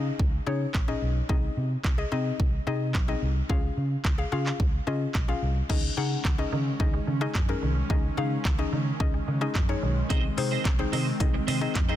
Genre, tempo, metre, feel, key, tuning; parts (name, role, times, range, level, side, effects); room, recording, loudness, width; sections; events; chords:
dance-pop; 109 BPM; 4/4; straight; Db major; A4 = 439 Hz
mallet-like synth pluck; accompaniment; 0.0-12.0 s; C4 to Gb5; -32 LUFS; left 6 dB; chorus, sidechain pumping
vintage muted fingered electric bass; bass; 0.0-11.9 s; Bb1 to Db3; -29 LUFS; equal; sidechain pumping
pop drum kit; drums; 0.2-11.9 s; crash cymbal, handclaps, hi-hat, kick drum; -28 LUFS; equal
airy breathy pad; sustained chords; 5.9-12.0 s; Eb3 to Db4; -35 LUFS; equal; chorus, sidechain pumping
resonant blip pluck; arpeggios; 5.7-11.6 s; Eb3 to Ab3; -37 LUFS; right 4 dB
twelve-string electric guitar; riff; 10.1-12.0 s; C4 to C5; -33 LUFS; right 7 dB; ensemble chorus
digital ambience; dense, heavily limited modern master; -24 LUFS; side -12 dB against mid
0.0-5.7 A section; 5.7-12.0 B section
0.0 Dbsus2; 1.3 Ab/C; 3.5 Db; 5.7 Dbsus2; 10.1 Ab